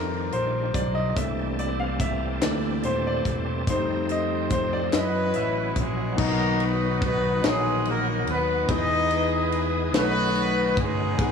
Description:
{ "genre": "slow gospel", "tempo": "48 BPM (dotted quarters)", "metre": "6/8", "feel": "straight", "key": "B major from 6.2 s", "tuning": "A4 = 440 Hz", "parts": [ { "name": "clear concert grand piano", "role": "accompaniment", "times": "0.0-11.3 s", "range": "G#2 to A#5", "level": "-28 LUFS", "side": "left 2 dB", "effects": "none" }, { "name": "bright tonewheel organ", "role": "sustained chords", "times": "0.0-11.3 s", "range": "Eb3 to D#5", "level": "-31 LUFS", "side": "right 4 dB", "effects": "slow rotary speaker, chorus vibrato" }, { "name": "fingered electric bass", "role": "bass", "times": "0.0-11.3 s", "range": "Eb1 to Gb2", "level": "-29 LUFS", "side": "left 1 dB", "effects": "none" }, { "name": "tight funk drum kit", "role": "drums", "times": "0.3-11.3 s", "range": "crash cymbal, hi-hat, kick drum, ride cymbal, snare drum", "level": "-29 LUFS", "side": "left 1 dB", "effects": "none" }, { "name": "group handclap", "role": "percussion", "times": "2.4-5.3 s", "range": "none", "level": "-42 LUFS", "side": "left 5 dB", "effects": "none" }, { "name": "clear horn section", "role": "melody", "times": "5.0-11.3 s", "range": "Ab3 to D#5", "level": "-25 LUFS", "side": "left 1 dB", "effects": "none" } ], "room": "light reverb, small room ambience", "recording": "small room reverb", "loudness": "-22 LUFS", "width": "side -6 dB against mid", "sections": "0.0-6.2 A section; 6.2-11.3 B section", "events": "grand piano solo 0.0-6.2", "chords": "0.0 Ebmaj9; 1.2 C13; 3.7 F9; 4.9 Gb7; 6.2 Bmaj7; 8.7 Emaj7; 9.9 B9" }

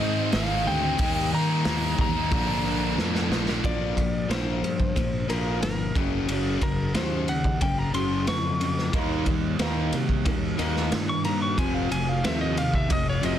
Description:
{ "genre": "quiet-loud alternative rock", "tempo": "91 BPM", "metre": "4/4", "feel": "straight", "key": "Bb mixolydian", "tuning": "A4 = 444 Hz", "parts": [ { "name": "lightly driven lead guitar", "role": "melody", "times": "0.0-13.4 s", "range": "Bb4 to Db6", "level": "-30 LUFS", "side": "equal", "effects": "none" }, { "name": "scooped high-gain guitar", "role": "riff", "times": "0.0-3.6 s", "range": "Ab2 to Eb4", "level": "-32 LUFS", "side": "equal", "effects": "distortion" }, { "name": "sludgy distorted guitar", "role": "riff", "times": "0.0-13.4 s", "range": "F2 to Eb4", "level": "-30 LUFS", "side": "left 10 dB", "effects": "overdrive" }, { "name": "thick fuzz guitar", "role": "riff", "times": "0.0-3.6, 8.9-13.4 s", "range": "F2 to Eb4", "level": "-32 LUFS", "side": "right 11 dB", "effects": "distortion" }, { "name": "fuzz fingered electric bass", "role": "bass", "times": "0.0-13.4 s", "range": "F1 to Eb3", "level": "-29 LUFS", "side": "right 1 dB", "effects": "overdrive" }, { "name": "raw garage drum kit", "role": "drums", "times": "0.3-13.4 s", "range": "hi-hat, kick drum, ride cymbal, snare drum", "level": "-28 LUFS", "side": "equal", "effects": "none" }, { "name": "electric guitar through a small old amp", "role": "arpeggios", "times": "3.6-13.4 s", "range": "F2 to Eb4", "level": "-32 LUFS", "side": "right 1 dB", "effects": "analog chorus" } ], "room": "light reverb, studio reverb", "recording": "dense, heavily limited modern master", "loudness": "-22 LUFS", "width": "side -10 dB against mid", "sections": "0.0-3.6 A section; 3.6-13.4 B section", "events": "drum fill 3.0-3.6; lead electric guitar solo 3.6-13.4", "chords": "0.0 Ab; 1.0 Eb; 2.3 Bb; 6.0 Gb5; 8.9 Eb; 11.6 F5" }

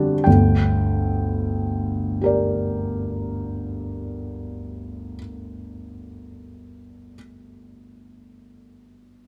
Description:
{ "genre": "classical, romantic nocturne for solo piano", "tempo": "31 BPM (dotted quarters)", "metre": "12/8", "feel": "rubato", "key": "G minor", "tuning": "A4 = 440 Hz", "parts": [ { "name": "felt-muted upright piano", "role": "solo", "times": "0.0-9.3 s", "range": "G1 to A5", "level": "-23 LUFS", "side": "equal", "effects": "none" } ], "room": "light reverb", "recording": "close, detailed microphones", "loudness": "-22 LUFS", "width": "mono", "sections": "0.3-8.1 A section", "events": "none", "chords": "0.3 Gm" }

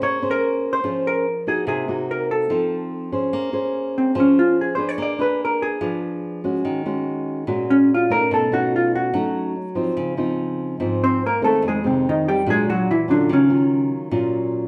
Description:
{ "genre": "bossa nova", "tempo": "145 BPM", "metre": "4/4", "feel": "straight", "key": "Bb minor", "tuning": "A4 = 440 Hz", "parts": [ { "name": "hollow-body jazz guitar", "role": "melody", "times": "0.0-13.9 s", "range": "C3 to D5", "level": "-21 LUFS", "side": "equal", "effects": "none" }, { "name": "nylon-string guitar", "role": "accompaniment", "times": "0.0-14.7 s", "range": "F2 to C5", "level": "-25 LUFS", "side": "equal", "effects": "none" } ], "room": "wet large studio reverb, RT60 1.0 s", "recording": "band playing live in one room", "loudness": "-21 LUFS", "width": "mono", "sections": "0.0-3.3 A section; 3.3-14.7 B section", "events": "hollow-body jazz guitar solo 3.3-14.7", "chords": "0.0 Bbm9; 1.7 Cm7b5; 2.5 F7; 3.3 Bbm9; 5.0 Bb7b9; 6.6 Ebm7; 8.3 B9; 10.0 Dbmaj9; 11.6 Fm7; 12.5 Bb7alt; 13.3 Ebm9" }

